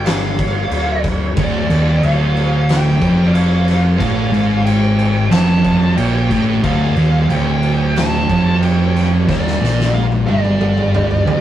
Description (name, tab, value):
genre	stoner and doom metal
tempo	91 BPM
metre	4/4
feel	straight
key	D minor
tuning	A4 = 443 Hz
part	fuzz lead guitar	melody	0.0-11.4 s	D5 to A5	-22 LUFS	right 1 dB	distortion
part	overdriven fingered electric bass	bass	0.0-11.4 s	D1 to Bb1	-22 LUFS	left 1 dB	none
part	oversized low-tuned drum kit	drums	0.1-11.4 s	crash cymbal, kick drum, snare drum, toms	-20 LUFS	equal	none
part	thick fuzz guitar	riff	1.4-11.4 s	D2 to Bb2	-18 LUFS	left 2 dB	distortion
part	thick fuzz guitar	riff	1.4-11.4 s	D2 to Bb2	-16 LUFS	right 3 dB	distortion
room	moderate stone room reverb, RT60 0.9 s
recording	rough rehearsal-room recording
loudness	-12 LUFS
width	side -12 dB against mid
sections	0.0-11.4 A section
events	drum fill 9.3-11.4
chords	0.0 Dm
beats	0.06 0.71 | 1.37 2.02 2.68 3.34 | 4.00 4.65 5.31 5.97 | 6.63 7.29 7.95 8.61 | 9.27 9.93 10.60 11.26